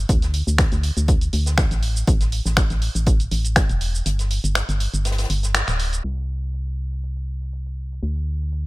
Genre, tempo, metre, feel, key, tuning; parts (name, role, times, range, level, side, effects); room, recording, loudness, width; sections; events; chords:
deep house; 121 BPM; 4/4; swing 53% on 16ths; A4 = 440 Hz
organ-like FM bass; bass; 0.0-8.7 s; D1 to D2; -22 LUFS; equal; tube saturation, sidechain pumping
electronic kick drum; drums; 0.1-3.7 s; -18 LUFS; equal
open jazz drum kit; drums; 0.1-5.8 s; hi-hat, snare drum; -34 LUFS; left 3 dB; high-pass filter on hats, high-pass filter on snare, high-pass filter on room
punchy analog drum machine; drums; 0.1-8.6 s; finger snaps, hi-hat, shaker; -25 LUFS; right 1 dB
small room ambience; low-pass filter; -19 LUFS; side -21 dB against mid
0.0-6.0 A section; 6.0-8.7 B section
break 4.1-6.0; band accent 5.5; filter sweep 6.0-8.7